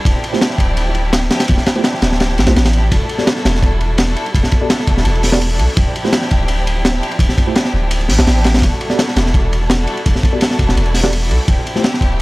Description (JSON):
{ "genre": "drum and bass, jungle", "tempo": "168 BPM", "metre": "4/4", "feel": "straight", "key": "E phrygian", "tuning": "A4 = 440 Hz", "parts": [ { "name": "dark chamber string section", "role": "sustained chords", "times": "0.0-12.2 s", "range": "F3 to A4", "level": "-22 LUFS", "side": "equal", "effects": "vintage 12-bit sampler grit" }, { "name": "long sustained 808-style bass", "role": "bass", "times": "0.1-12.2 s", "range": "D1 to B1", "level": "-16 LUFS", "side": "equal", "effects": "none" }, { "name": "crunchy breakbeat drum kit", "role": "drums", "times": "0.1-12.2 s", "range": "hi-hat, kick drum, ride cymbal, snare drum", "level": "-15 LUFS", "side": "equal", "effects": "none" }, { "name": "mellow tine electric piano", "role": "stabs", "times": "0.3-11.8 s", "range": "A3 to D5", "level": "-23 LUFS", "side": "right 1 dB", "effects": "medium stereo tremolo, dub echo" } ], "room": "small room ambience", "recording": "dry, gritty hardware recording", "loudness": "-12 LUFS", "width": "side -21 dB against mid", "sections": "0.0-2.9 A section; 2.9-12.2 A section", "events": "drop 0.0-2.9, 2.9-12.2", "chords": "0.1 Dm11; 2.9 Em11; 5.8 Dm11; 8.6 Em11; 11.5 Dm11" }